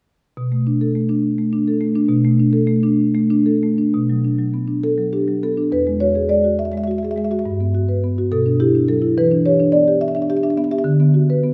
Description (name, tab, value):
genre	classical, contemporary piece for solo marimba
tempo	69 BPM (dotted quarters)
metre	6/8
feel	rubato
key	B minor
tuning	A4 = 443 Hz
part	marimba with soft mallets	solo	0.4-11.5 s	E2 to E5	-18 LUFS	equal	none
room	wet recital hall reverb, RT60 1.6 s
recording	heard from further back in the room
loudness	-18 LUFS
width	mono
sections	0.4-3.9 A section; 3.9-11.5 B section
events	none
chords	0.4 Bm7; 3.9 Bm; 5.7 Eadd9; 7.5 Gmaj7; 8.3 Bmadd11; 9.2 Em7; 10.9 D6